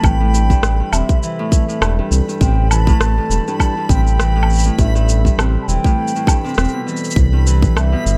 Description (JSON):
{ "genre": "folktronica", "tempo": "101 BPM", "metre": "4/4", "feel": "swing 56% on 16ths", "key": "A minor", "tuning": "A4 = 440 Hz", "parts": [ { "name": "mellow baroque flute", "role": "melody", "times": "0.0-8.2 s", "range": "E5 to A5", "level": "-26 LUFS", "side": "equal", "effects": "tape echo" }, { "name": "warbly tape-like pad", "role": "sustained chords", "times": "0.0-8.2 s", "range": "E3 to A4", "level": "-31 LUFS", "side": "equal", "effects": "chorus, built-in reverb" }, { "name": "Celtic harp", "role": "arpeggios", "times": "0.0-8.2 s", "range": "G2 to G3", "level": "-25 LUFS", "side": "equal", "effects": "none" }, { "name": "round analog bass", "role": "bass", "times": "0.0-8.2 s", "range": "E1 to C2", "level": "-17 LUFS", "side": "equal", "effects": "none" }, { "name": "electronic kick drum", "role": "drums", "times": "0.0-7.7 s", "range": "none", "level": "-17 LUFS", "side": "equal", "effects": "none" }, { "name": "electronic woodblock, shaker and rim click", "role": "drums", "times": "0.0-8.2 s", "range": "none", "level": "-24 LUFS", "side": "equal", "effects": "none" }, { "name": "backwards swelling texture", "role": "texture", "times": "0.0-8.2 s", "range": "B5", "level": "-35 LUFS", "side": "equal", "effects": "built-in reverb" } ], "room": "digital ambience", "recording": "dark, warm production", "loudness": "-15 LUFS", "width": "mono", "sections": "0.0-8.2 A section", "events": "none", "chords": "0.0 Am9; 7.2 Cmaj7" }